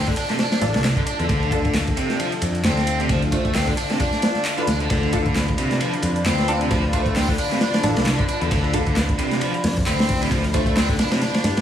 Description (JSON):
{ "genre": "breakbeat, breaks", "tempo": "133 BPM", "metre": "4/4", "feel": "swing 57% on 16ths", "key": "D dorian", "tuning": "A4 = 440 Hz", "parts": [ { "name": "lush unison pad", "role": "sustained chords", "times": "0.0-11.6 s", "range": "D3 to B4", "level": "-28 LUFS", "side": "left 1 dB", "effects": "chorus, vintage 12-bit sampler grit, sidechain pumping" }, { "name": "biting overdriven guitar", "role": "riff", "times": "0.0-11.6 s", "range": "C3 to D4", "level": "-25 LUFS", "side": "equal", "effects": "tube saturation, digital delay" }, { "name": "picked electric bass", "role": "bass", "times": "0.0-11.6 s", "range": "A1 to G2", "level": "-23 LUFS", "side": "equal", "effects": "none" }, { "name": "crunchy breakbeat drum kit", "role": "drums", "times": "0.1-11.6 s", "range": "hi-hat, kick drum, ride cymbal, snare drum", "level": "-23 LUFS", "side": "equal", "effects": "none" }, { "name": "punchy analog drum machine", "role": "drums", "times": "0.1-11.6 s", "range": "handclaps, hi-hat", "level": "-31 LUFS", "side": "equal", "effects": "overdrive" }, { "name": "filtered dub chord stab", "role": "stabs", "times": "0.6-10.7 s", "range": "D4 to C5", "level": "-28 LUFS", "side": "right 1 dB", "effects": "phaser, lush chorus, vintage 12-bit sampler grit, digital delay" } ], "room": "light reverb", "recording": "studio reverb", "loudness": "-18 LUFS", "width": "side -10 dB against mid", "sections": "0.0-11.6 A section", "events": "kick drops out 11.2-11.6", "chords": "0.0 Dm" }